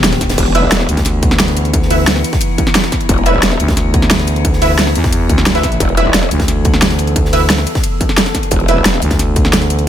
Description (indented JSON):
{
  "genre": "dark technical drum and bass",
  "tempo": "177 BPM",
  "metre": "4/4",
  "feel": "straight",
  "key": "unclear",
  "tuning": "A4 = 439 Hz",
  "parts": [
    { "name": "metallic inharmonic drone", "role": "sustained chords", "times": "0.0-9.9 s", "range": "E3 to A4", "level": "-21 LUFS", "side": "left 2 dB", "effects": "chorus, built-in reverb, sidechain pumping" },
    { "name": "growling FM bass", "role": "bass", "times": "0.0-9.9 s", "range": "E1 to E2", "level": "-15 LUFS", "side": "equal", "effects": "none" },
    { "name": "dubstep drum kit", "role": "drums", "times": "0.0-9.9 s", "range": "crash cymbal, hi-hat, snare drum", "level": "-15 LUFS", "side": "equal", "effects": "none" },
    { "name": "gated 80s drum kit", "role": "drums", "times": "0.0-9.9 s", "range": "hi-hat, ride cymbal, snare drum", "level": "-23 LUFS", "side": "equal", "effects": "high-pass filter on cymbals, high-pass filter on hats, high-pass filter on snare, high-pass filter on room" },
    { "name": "electronic kick drum", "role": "drums", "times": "0.2-9.4 s", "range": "none", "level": "-16 LUFS", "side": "equal", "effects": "distortion" },
    { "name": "growl bass", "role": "bass", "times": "0.4-0.9, 3.1-3.6, 5.8-6.3, 8.5-9.0 s", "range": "E1", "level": "-15 LUFS", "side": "equal", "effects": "chorus, overdrive, sidechain pumping" },
    { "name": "orchestra-hit-like synth stab", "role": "stabs", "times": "0.5-8.8 s", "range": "E4 to E5", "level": "-18 LUFS", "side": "right 2 dB", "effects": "built-in reverb, ping-pong delay" }
  ],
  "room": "small room ambience",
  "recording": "none",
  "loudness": "-10 LUFS",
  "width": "side -10 dB against mid",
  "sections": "0.0-9.9 A section",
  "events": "none",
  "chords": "0.0 E5"
}